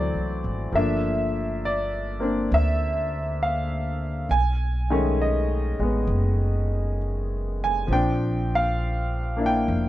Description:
jazz ballad; 67 BPM; 4/4; swing 69% on 8ths; A4 = 437 Hz
bright upright piano; accompaniment; 0.0-9.9 s; D#3 to G#5; -24 LUFS; equal
upright bass; bass; 0.0-9.9 s; F1 to D2; -25 LUFS; equal
little or no reverb; dry, close 1970s-style studio recording; -22 LUFS; side -14 dB against mid
0.0-9.9 A section
0.0 D7; 0.7 Gm9; 4.3 B13; 7.9 Bbadd9

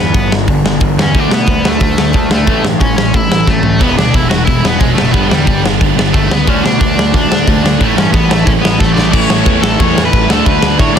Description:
punk rock; 180 BPM; 4/4; straight; A mixolydian; A4 = 440 Hz
crunchy overdriven guitar; melody; 0.0-11.0 s; G3 to D5; -17 LUFS; left 1 dB
overdriven semi-hollow guitar; riff; 0.0-11.0 s; E2 to D4; -17 LUFS; right 12 dB
sludgy distorted guitar; riff; 0.0-11.0 s; E2 to D4; -17 LUFS; left 12 dB; overdrive
fuzz picked electric bass; bass; 0.0-11.0 s; E1 to B2; -18 LUFS; equal; overdrive
big rock drum kit; drums; 0.1-11.0 s; crash cymbal, hi-hat, kick drum, snare drum, toms; -13 LUFS; equal
scooped high-gain guitar; riff; 3.8-11.0 s; G2 to E4; -20 LUFS; right 4 dB; distortion
little or no reverb; dense, heavily limited modern master; -9 LUFS; side -8 dB against mid
0.0-9.1 A section; 9.1-11.0 B section
drum fill 3.5-3.8, 8.8-9.1
0.0 G; 1.1 D5; 2.5 A5; 3.8 E; 5.1 G; 6.5 D; 7.8 A; 10.3 D

